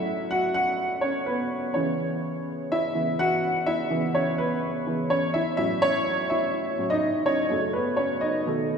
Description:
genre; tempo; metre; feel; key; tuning
pop; 125 BPM; 4/4; straight; C# minor; A4 = 439 Hz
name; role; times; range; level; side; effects
warm upright piano; solo; 0.0-8.8 s; F#2 to F#5; -23 LUFS; equal; none
room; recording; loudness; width
wet church reverb, RT60 3.1 s; recorded in a church or concert hall; -23 LUFS; side -6 dB against mid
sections
0.0-8.8 A section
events
upright piano solo 0.0-8.8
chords
0.0 F#m; 1.8 C#m7; 5.3 A6; 7.5 F#m

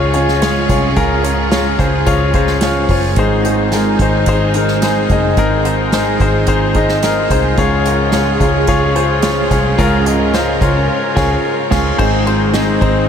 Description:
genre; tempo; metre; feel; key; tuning
piano-driven pop; 109 BPM; 4/4; straight; Ab major; A4 = 439 Hz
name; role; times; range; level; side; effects
clear concert grand piano; accompaniment; 0.0-13.1 s; Ab2 to C6; -15 LUFS; left 4 dB; none
clear symphonic string section; sustained chords; 0.0-13.1 s; Db3 to Bb4; -22 LUFS; right 3 dB; none
twelve-string electric guitar; riff; 0.0-13.1 s; Ab2 to Ab4; -21 LUFS; right 6 dB; analog chorus
vintage muted picked electric bass; bass; 0.0-13.1 s; Gb1 to Db2; -18 LUFS; equal; none
unplugged drum kit; drums; 0.1-12.9 s; crash cymbal, hi-hat, kick drum, ride cymbal, snare drum; -20 LUFS; right 1 dB; none
room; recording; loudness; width
moderate huge ambient reverb, RT60 7.7 s; dreamy mix soaked in reverb; -11 LUFS; side -8 dB against mid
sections
0.0-12.0 A section; 12.0-13.1 A section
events
band accent 10.9-12.0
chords
0.0 Db; 3.2 Ab; 7.6 Db; 12.0 Ab

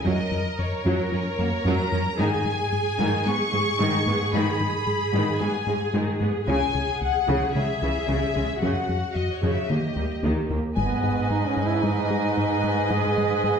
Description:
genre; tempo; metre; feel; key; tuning
cinematic, hybrid orchestral and electronic film score; 112 BPM; 4/4; straight; G# minor; A4 = 440 Hz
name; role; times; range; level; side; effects
rich symphonic violin section; melody; 0.0-10.2 s; C#5 to C#6; -28 LUFS; left 4 dB; none
rich symphonic viola section; accompaniment; 0.0-13.6 s; C#3 to D#5; -27 LUFS; right 1 dB; none
plucky analog bass; riff; 0.0-13.6 s; C#2 to G#3; -27 LUFS; left 2 dB; none
rich symphonic cello section; bass; 0.1-13.6 s; D#2 to C#3; -29 LUFS; right 2 dB; none
warm duduk; melody; 10.8-13.6 s; B3 to G#4; -26 LUFS; right 5 dB; none
warm symphonic violin section; second line; 10.8-13.6 s; G#5; -30 LUFS; left 3 dB; none
taiko ensemble; drums; 10.8-11.8 s; none; -33 LUFS; equal; none
room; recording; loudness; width
wet recital hall reverb, RT60 1.3 s; heard from further back in the room; -22 LUFS; side -7 dB against mid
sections
0.0-10.8 A section; 10.8-13.6 B section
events
none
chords
0.1 F#; 2.2 G#m; 6.5 C#m; 8.6 F#5; 9.7 D#; 10.8 G#m

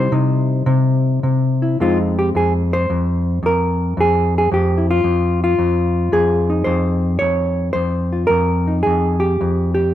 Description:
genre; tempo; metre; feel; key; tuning
solo jazz; 110 BPM; 4/4; swing 68% on 8ths, rubato; F minor; A4 = 440 Hz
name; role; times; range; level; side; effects
hollow-body jazz guitar; solo; 0.0-9.9 s; F2 to Db5; -15 LUFS; left 1 dB; none
room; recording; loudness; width
light reverb; none; -15 LUFS; side -12 dB against mid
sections
0.0-1.8 A section; 1.8-9.9 B section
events
hollow-body jazz guitar solo 0.0-1.8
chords
0.0 C; 1.8 Fm7

